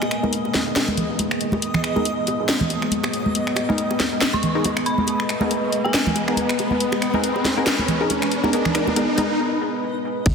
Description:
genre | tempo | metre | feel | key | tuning
deep dubstep | 139 BPM | 4/4 | swing 56% on 16ths, half-time | G# minor | A4 = 440 Hz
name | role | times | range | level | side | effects
dark detuned synth bell | melody | 0.0-0.1, 4.3-6.2 s | G#5 to C#6 | -30 LUFS | right 1 dB | chorus, tremolo, dub echo
deep dark ambient pad | sustained chords | 0.0-10.3 s | G#3 to B4 | -25 LUFS | left 2 dB | chorus, built-in reverb
garage drum kit | drums | 0.0-10.3 s | crash cymbal, finger snaps, handclaps, hi-hat, snare drum | -24 LUFS | left 1 dB | soft clipping on snare
bongos and congas | percussion | 0.0-9.3 s | none | -26 LUFS | right 1 dB | dub echo
riser and sub drop | sound effects | 0.2-10.3 s | none | -28 LUFS | right 1 dB | none
backwards swelling texture | texture | 0.0-10.3 s | A#3 to D#5 | -31 LUFS | right 2 dB | built-in reverb
filtered dub chord stab | stabs | 0.2-9.3 s | B3 to A#4 | -26 LUFS | left 1 dB | phaser, dub echo
soft dub sub bass | bass | 10.3 s | G#1 | -22 LUFS | equal | none
electronic kick drum | drums | 10.3 s | none | -18 LUFS | equal | soft clipping on kick
room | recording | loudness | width
wet lush hall reverb, RT60 2.0 s, digital ambience | dense, heavily limited modern master | -19 LUFS | side -6 dB against mid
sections
0.0-10.3 A section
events
build-up 0.0-10.3; riser 0.2-9.4; break 9.4-10.3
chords
0.0 G#madd9

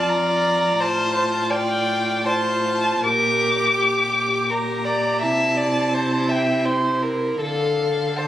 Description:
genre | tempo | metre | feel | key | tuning
classical, slow romantic movement for string quartet | 82 BPM | 3/4 | uneven beats, rubato | unclear | A4 = 440 Hz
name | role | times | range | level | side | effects
dark violin | melody | 0.0-8.3 s | F5 to D6 | -22 LUFS | left 2 dB | none
rich violin | second line | 0.0-8.3 s | G4 to E5 | -22 LUFS | right 1 dB | none
warm viola | accompaniment | 0.0-8.3 s | E4 to A4 | -26 LUFS | left 1 dB | none
warm cello | bass | 0.0-8.3 s | F2 to D3 | -27 LUFS | right 2 dB | none
room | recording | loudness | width
moderate scoring stage reverb, RT60 1.9 s | recorded on a phone in the room, studio ambience | -18 LUFS | side -12 dB against mid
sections
0.0-8.3 A section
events
none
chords
0.0 N.C.; 0.8 F/A; 3.1 Bb6; 5.2 C; 7.4 Dm

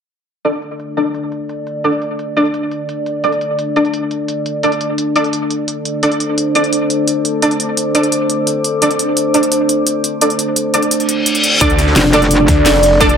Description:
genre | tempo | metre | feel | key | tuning
dark technical drum and bass | 172 BPM | 4/4 | straight | unclear | A4 = 444 Hz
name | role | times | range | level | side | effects
dark analog pad | sustained chords | 0.4-13.2 s | D4 to D5 | -18 LUFS | left 2 dB | wide subtle chorus, sidechain pumping
orchestra-hit-like synth stab | stabs | 0.4-13.1 s | D4 to D5 | -16 LUFS | right 1 dB | built-in reverb, tape echo
drum and bass drum kit | drums | 0.4-13.2 s | hi-hat, snare drum | -18 LUFS | equal | low-pass filter on hats, low-pass filter on snare, low-pass filter on room
deep dark ambient pad | texture | 2.2-13.2 s | D4 to D6 | -20 LUFS | right 3 dB | chorus, built-in reverb, sidechain pumping
reverse cymbal | sound effects | 11.1-11.6 s | none | -15 LUFS | left 2 dB | none
snarling distorted saw bass | bass | 11.6-13.2 s | F1 to D2 | -14 LUFS | equal | distortion, sidechain pumping
crunchy breakbeat drum kit | drums | 11.6-13.1 s | hi-hat, snare drum | -26 LUFS | left 1 dB | none
electronic kick drum | drums | 11.6-13.1 s | none | -16 LUFS | equal | overdrive
metallic wobble bass | bass | 12.0-12.5 s | F1 | -14 LUFS | equal | distortion, chorus
room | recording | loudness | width
moderate digital room reverb, RT60 1.1 s, digital ambience | none | -12 LUFS | side -7 dB against mid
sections
0.4-11.6 A section; 11.6-13.2 B section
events
filter sweep on drum 0.4-11.6; reverse cymbal 11.1-11.6; drop 11.6-13.2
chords
0.4 D5

